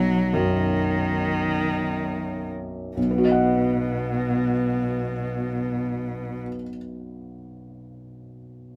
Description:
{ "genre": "neoclassical piano and strings", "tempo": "free time", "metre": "none", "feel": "none", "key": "B major", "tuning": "A4 = 440 Hz", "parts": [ { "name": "rich cello", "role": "second line", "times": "0.0-6.4 s", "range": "B2 to F#3", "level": "-28 LUFS", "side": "equal", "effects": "none" }, { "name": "felt-muted upright piano", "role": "accompaniment", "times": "0.0-8.8 s", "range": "B1 to F#5", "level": "-28 LUFS", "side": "equal", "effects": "none" } ], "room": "light reverb", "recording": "none", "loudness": "-24 LUFS", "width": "mono", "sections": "0.0-3.0 A section; 3.0-6.6 B section", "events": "slowing down 0.0-3.0", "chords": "0.0 B" }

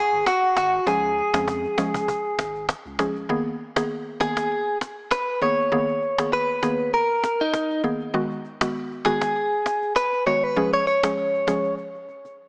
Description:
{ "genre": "afrobeats", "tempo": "99 BPM", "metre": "4/4", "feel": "swing 55% on 16ths", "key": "G# dorian", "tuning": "A4 = 440 Hz", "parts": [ { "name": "direct-recorded clean electric guitar", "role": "melody", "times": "0.0-11.7 s", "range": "D#4 to C#5", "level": "-24 LUFS", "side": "equal", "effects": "none" }, { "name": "warm sub bass", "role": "bass", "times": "0.1-3.3 s", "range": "D#1 to E#2", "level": "-42 LUFS", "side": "equal", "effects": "none" }, { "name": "cajon", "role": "drums", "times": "0.1-12.3 s", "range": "none", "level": "-30 LUFS", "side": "equal", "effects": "none" }, { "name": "mallet-like synth pluck", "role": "accompaniment", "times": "0.9-11.8 s", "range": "D#3 to G#4", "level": "-28 LUFS", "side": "equal", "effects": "chorus" } ], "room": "moderate plate reverb, RT60 2.4 s", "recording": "dry, gritty hardware recording, transformer saturation, small speaker sound", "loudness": "-24 LUFS", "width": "mono", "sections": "0.0-3.3 A section; 3.3-12.5 B section", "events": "none", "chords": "0.0 B5 (rootless); 0.9 C#; 3.3 G#madd9; 8.1 B6; 10.6 C#" }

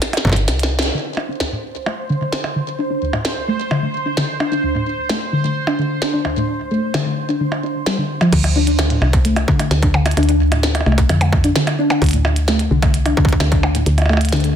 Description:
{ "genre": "IDM", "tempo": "130 BPM", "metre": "4/4", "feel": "straight", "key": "D minor", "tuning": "A4 = 440 Hz", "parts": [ { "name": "glitchy drum kit", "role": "drums", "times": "0.0-14.5 s", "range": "crash cymbal, hi-hat, percussion blips, snare drum", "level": "-22 LUFS", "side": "right 1 dB", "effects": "studio reverb, soft clipping on snare, digital delay" }, { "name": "woody FM bass", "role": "bass", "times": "0.2-0.9, 8.3-14.5 s", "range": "G1 to F2", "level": "-16 LUFS", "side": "equal", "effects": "none" }, { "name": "electronic kick drum", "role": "drums", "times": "0.2-0.4, 8.3-13.6 s", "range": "none", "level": "-17 LUFS", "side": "equal", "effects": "distortion, studio reverb" }, { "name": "soft round pluck", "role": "arpeggios", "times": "0.9-14.6 s", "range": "D2 to D4", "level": "-19 LUFS", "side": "left 1 dB", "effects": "ensemble chorus, digital delay" }, { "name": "bubbling stepped-filter texture", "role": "texture", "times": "1.1-8.3 s", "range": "C5", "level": "-27 LUFS", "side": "right 3 dB", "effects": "chorus, built-in reverb" } ], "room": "moderate digital room reverb, RT60 1.1 s", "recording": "dense, heavily limited modern master", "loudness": "-15 LUFS", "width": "side -9 dB against mid", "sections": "0.9-8.3 A section; 8.3-14.6 B section", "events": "drum fill 0.0-0.9; band accent 0.8", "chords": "0.0 Gsus4; 0.9 D7(no3)" }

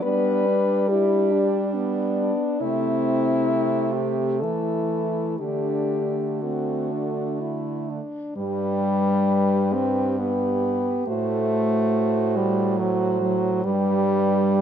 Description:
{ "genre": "classical, lyrical piece for horn quartet", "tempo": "58-72 BPM", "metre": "3/4", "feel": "rubato", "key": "G major", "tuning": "A4 = 441 Hz", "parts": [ { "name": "clear French horn", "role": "melody", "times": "0.0-14.6 s", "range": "D4 to C5", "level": "-26 LUFS", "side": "left 6 dB", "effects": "none" }, { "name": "clear French horn", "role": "second line", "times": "0.0-14.6 s", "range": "A3 to G4", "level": "-28 LUFS", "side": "right 10 dB", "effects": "none" }, { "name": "warm French horn", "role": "accompaniment", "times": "0.0-14.6 s", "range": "F#3 to E4", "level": "-24 LUFS", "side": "left 1 dB", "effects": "none" }, { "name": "clear French horn", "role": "bass", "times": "0.0-14.6 s", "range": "G2 to G3", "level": "-28 LUFS", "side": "right 3 dB", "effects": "none" } ], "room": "light reverb", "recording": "close, detailed microphones", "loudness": "-20 LUFS", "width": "side -8 dB against mid", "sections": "0.0-8.4 A section; 8.4-14.6 B section", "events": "none", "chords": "0.0 G; 2.6 C6; 5.4 D; 8.4 G; 11.1 F#dim/A; 13.6 G" }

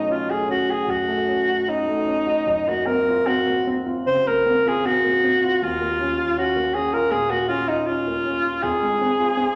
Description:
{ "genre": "classical, impressionist duo for alto saxophone and grand piano", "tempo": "74-82 BPM", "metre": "4/4", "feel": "rubato", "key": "unclear", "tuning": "A4 = 438 Hz", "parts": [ { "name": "warm alto saxophone", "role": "melody", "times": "0.0-9.6 s", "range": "Eb4 to C5", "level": "-22 LUFS", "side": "equal", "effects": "none" }, { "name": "warm grand piano", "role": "accompaniment", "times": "0.0-9.6 s", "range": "Cb2 to Gb4", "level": "-28 LUFS", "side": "equal", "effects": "none" } ], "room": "wet recital hall reverb, RT60 1.7 s", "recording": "none", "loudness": "-21 LUFS", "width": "mono", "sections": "0.0-9.6 A section", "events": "none", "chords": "0.0 Cb9; 2.5 Gbmaj7#11; 5.6 Ebsus2; 8.6 Fm" }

